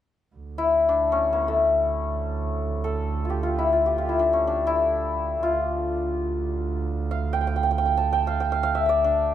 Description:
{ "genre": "persian", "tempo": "free time", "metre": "none", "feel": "none", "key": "D avaz esfahan", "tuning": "A4 = 439 Hz", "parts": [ { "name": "warm double bass", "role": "drone", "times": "0.4-9.3 s", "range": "D2", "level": "-28 LUFS", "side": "right 4 dB", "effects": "none" }, { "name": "santur", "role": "melody", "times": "0.6-9.3 s", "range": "A3 to A5", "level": "-22 LUFS", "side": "left 2 dB", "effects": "none" } ], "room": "little or no reverb", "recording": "close, detailed microphones", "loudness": "-21 LUFS", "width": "side -10 dB against mid", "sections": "0.3-9.3 A section", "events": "none", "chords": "none", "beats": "free time" }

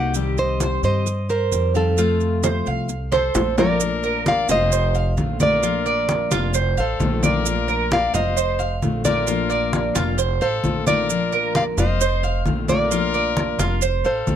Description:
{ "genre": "latin, Cuban son and guajira", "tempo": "132 BPM", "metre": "4/4", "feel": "straight", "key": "Bb major", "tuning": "A4 = 440 Hz", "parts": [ { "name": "nylon-string guitar", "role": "melody", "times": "0.0-14.4 s", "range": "A4 to Gb5", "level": "-24 LUFS", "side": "right 1 dB", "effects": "none" }, { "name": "picked steel-string acoustic guitar", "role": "accompaniment", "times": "0.0-14.4 s", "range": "C3 to G4", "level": "-26 LUFS", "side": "left 7 dB", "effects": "none" }, { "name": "Cuban tres", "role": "arpeggios", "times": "0.0-14.4 s", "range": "F4 to F5", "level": "-25 LUFS", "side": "right 6 dB", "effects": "none" }, { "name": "upright bass", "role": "bass", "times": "0.0-14.4 s", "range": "F1 to G2", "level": "-24 LUFS", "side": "equal", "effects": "none" }, { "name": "congas", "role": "percussion", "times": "0.1-14.4 s", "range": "none", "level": "-25 LUFS", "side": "left 1 dB", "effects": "none" }, { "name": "maracas", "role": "percussion", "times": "0.1-14.4 s", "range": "none", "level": "-29 LUFS", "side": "right 9 dB", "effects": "none" }, { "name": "brilliant trumpet", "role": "second line", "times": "3.1-14.4 s", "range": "A4 to D5", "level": "-28 LUFS", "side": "left 8 dB", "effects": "none" } ], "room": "little or no reverb", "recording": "close, detailed microphones", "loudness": "-18 LUFS", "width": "side -9 dB against mid", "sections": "0.0-3.8 A section; 3.8-14.4 B section", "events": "drum fill 3.1-3.8", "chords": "0.1 Cm; 2.0 F; 3.8 Bb; 4.7 F7; 5.6 Bb; 6.5 F7; 7.5 Bb; 8.4 F7; 9.3 Bb; 10.2 F7; 11.1 Bb; 12.0 F7; 12.9 Bb; 13.8 F7", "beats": "| 0.15 0.60 1.06 1.52 | 1.98 2.44 2.89 3.35 | 3.81 4.26 4.72 5.18 | 5.63 6.09 6.54 7.00 | 7.46 7.91 8.37 8.82 | 9.28 9.73 10.19 10.64 | 11.10 11.55 12.01 12.46 | 12.91 13.37 13.82 14.28" }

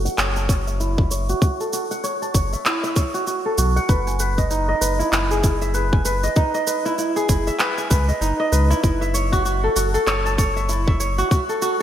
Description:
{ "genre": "organic downtempo", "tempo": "97 BPM", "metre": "4/4", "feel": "swing 59% on 16ths", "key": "F# dorian", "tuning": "A4 = 443 Hz", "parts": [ { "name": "kora", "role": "arpeggios", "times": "0.0-11.8 s", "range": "D#4 to A5", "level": "-22 LUFS", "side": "equal", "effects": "low-pass filter, digital delay" }, { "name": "warm sub bass", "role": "bass", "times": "0.0-11.2 s", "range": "F#1 to C#2", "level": "-22 LUFS", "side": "equal", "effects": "sidechain pumping" }, { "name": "electronic shaker and handclaps", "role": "drums", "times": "0.1-11.8 s", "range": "none", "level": "-26 LUFS", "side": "right 1 dB", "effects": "gated reverb" }, { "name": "electronic kick drum", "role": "drums", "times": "0.5-11.5 s", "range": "none", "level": "-18 LUFS", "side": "equal", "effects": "none" } ], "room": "moderate lush hall reverb, RT60 2.2 s", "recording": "bright 1980s-style digital production", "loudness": "-18 LUFS", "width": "side -10 dB against mid", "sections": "0.0-11.8 A section", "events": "filter sweep on kora 0.0-11.8", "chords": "0.0 F#m7; 3.9 Emaj7/F#; 8.8 F#m7", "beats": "0.18 0.80 | 1.42 2.03 2.65 3.27 | 3.89 4.51 5.13 5.75 | 6.36 6.98 7.60 8.22 | 8.84 9.46 10.07 10.69 | 11.31" }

